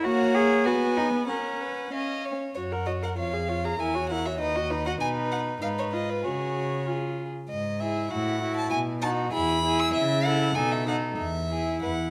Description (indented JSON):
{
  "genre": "quick classical-period movement for string quartet",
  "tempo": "97 BPM",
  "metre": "2/4",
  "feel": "straight",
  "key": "F# major, E major from 7.5 s",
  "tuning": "A4 = 436 Hz",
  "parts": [
    { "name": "rich violin", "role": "melody", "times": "0.0-12.1 s", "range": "B4 to E6", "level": "-33 LUFS", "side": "equal", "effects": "none" },
    { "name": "warm violin", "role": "second line", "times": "0.0-11.9 s", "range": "F#4 to F#5", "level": "-35 LUFS", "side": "equal", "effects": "none" },
    { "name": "warm viola", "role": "accompaniment", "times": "0.0-12.1 s", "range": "A#3 to A#4", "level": "-32 LUFS", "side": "equal", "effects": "none" },
    { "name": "rich cello", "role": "bass", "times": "0.0-12.1 s", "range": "D#2 to G#4", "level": "-32 LUFS", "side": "equal", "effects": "none" }
  ],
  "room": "moderate recital hall reverb, RT60 1.7 s",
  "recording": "none",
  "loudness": "-27 LUFS",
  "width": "mono",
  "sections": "0.0-2.6 A section; 2.6-12.1 B section",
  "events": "none",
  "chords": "0.0 F#/A#; 0.7 G#m7/B; 1.3 F#/C#; 2.6 F#; 3.2 C#/E#; 3.8 F#7/E; 4.4 B/D#; 5.0 B; 5.6 G#m; 6.2 C#sus4; 6.9 C#; 7.5 E/G#; 8.1 F#m7/A; 8.7 B; 9.3 E; 9.9 A/C#; 10.6 B7; 11.2 E"
}